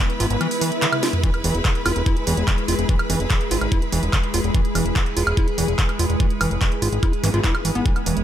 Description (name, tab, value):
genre	psychedelic trance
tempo	145 BPM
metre	4/4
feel	straight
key	E major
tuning	A4 = 437 Hz
part	evolving wavetable pad	sustained chords	0.0-8.2 s	G#3 to G#4	-27 LUFS	left 1 dB	phaser, built-in reverb, sidechain pumping
part	overdriven acid bass	riff	0.0-8.2 s	D3 to F4	-27 LUFS	right 1 dB	auto-pan, sidechain pumping, ping-pong delay
part	clear symphonic string section	texture	0.0-8.2 s	E4 to B5	-29 LUFS	right 1 dB	sidechain pumping
part	techno drum kit	drums	0.1-8.2 s	handclaps, hi-hat, snare drum, toms, woodblock	-25 LUFS	right 1 dB	overdrive
part	fat analog bass	bass	0.2-8.2 s	E1 to G#1	-23 LUFS	equal	none
part	swell and zap	sound effects	0.6-1.2, 7.2-7.3 s	none	-30 LUFS	right 2 dB	none
part	electronic kick drum	drums	1.2-7.9 s	none	-20 LUFS	equal	none
room	digital ambience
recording	none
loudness	-18 LUFS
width	side -11 dB against mid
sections	0.0-8.2 A section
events	swell 0.6-1.2; drum fill 0.9-1.2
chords	0.0 E5